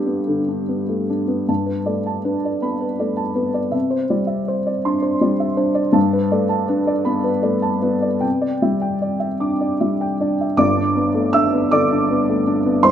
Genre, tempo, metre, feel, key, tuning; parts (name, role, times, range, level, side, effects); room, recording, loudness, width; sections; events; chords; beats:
neoclassical minimalist piano; 48-54 BPM (dotted quarters); 6/8; rubato; G major; A4 = 442 Hz
felt-muted upright piano; solo; 0.0-12.9 s; G1 to E6; -17 LUFS; equal
moderate plate reverb, RT60 3.0 s; rough home demo mix; -17 LUFS; side -9 dB against mid
0.0-1.5 A section; 1.5-10.6 B section; 10.6-12.9 A section
0.0 Gadd9; 3.7 Cadd9; 6.0 Gadd9; 8.2 Cadd9; 10.6 Gadd9
0.28 | 1.49 2.62 | 3.74 4.84 | 5.96 7.08 | 8.24 9.42 | 10.60 11.73 | 12.86